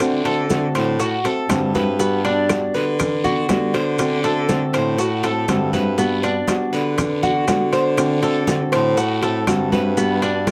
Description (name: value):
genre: latin, Cuban son and guajira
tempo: 120 BPM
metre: 4/4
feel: straight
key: G major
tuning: A4 = 441 Hz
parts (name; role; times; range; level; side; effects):
- nylon-string guitar; accompaniment; 0.0-10.5 s; D3 to F#4; -25 LUFS; equal; none
- Cuban tres; arpeggios; 0.0-10.5 s; B3 to C5; -25 LUFS; equal; none
- breathy baritone saxophone; bass; 0.0-10.5 s; G2 to D3; -24 LUFS; equal; none
- bongos; percussion; 0.0-10.5 s; none; -32 LUFS; equal; none
- claves; percussion; 0.0-10.5 s; none; -35 LUFS; equal; none
- congas; percussion; 0.0-10.5 s; none; -28 LUFS; equal; none
- guiro; percussion; 0.0-10.5 s; none; -36 LUFS; equal; none
- maracas; percussion; 0.0-10.5 s; none; -37 LUFS; equal; none
- timbales; percussion; 0.0-10.5 s; none; -31 LUFS; equal; none
room: moderate small room reverb, RT60 0.5 s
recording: none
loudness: -19 LUFS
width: mono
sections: 0.0-10.5 A section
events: none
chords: 0.0 D7; 2.0 Gmaj7; 4.0 D7; 6.0 Gmaj7; 8.0 D7; 10.0 Gmaj7